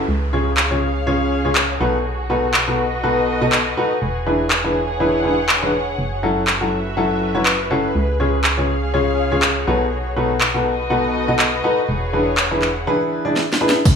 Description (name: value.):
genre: piano house.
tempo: 122 BPM.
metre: 4/4.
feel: swing 54% on 16ths.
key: unclear.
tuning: A4 = 439 Hz.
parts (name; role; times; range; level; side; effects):
organ-like FM bass; bass; 0.0-12.9 s; E1 to C#2; -25 LUFS; right 1 dB; sidechain pumping.
downlifter and impact; sound effects; 0.0-2.1, 13.9-14.0 s; none; -34 LUFS; right 1 dB; none.
muted studio string section; texture; 0.0-14.0 s; F#4 to F#5; -25 LUFS; left 1 dB; sidechain pumping.
clear concert grand piano; riff; 0.3-13.8 s; B2 to D#5; -19 LUFS; left 1 dB; sidechain pumping, dub echo.
house drum kit; drums; 0.6-14.0 s; crash cymbal, handclaps, snare drum, tambourine; -18 LUFS; equal; studio reverb.
electronic kick drum; drums; 13.9-14.0 s; none; -10 LUFS; equal; overdrive, studio reverb.
ride cymbal; drums; 13.9-14.0 s; none; barely audible; none; none.
room: light reverb, small room ambience.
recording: none.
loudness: -16 LUFS.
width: side -6 dB against mid.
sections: 0.0-13.9 A section.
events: drum fill 13.4-13.9.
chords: 0.1 C#; 1.8 B7; 4.0 E7; 6.0 F#m7; 8.0 C#; 9.7 B7; 11.9 E7.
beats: | 0.08 0.58 1.07 1.56 | 2.05 2.54 3.04 3.53 | 4.02 4.51 5.00 5.49 | 5.99 6.48 6.97 7.46 | 7.95 8.45 8.94 9.43 | 9.92 10.41 10.90 11.40 | 11.89 12.38 12.87 13.36 | 13.86.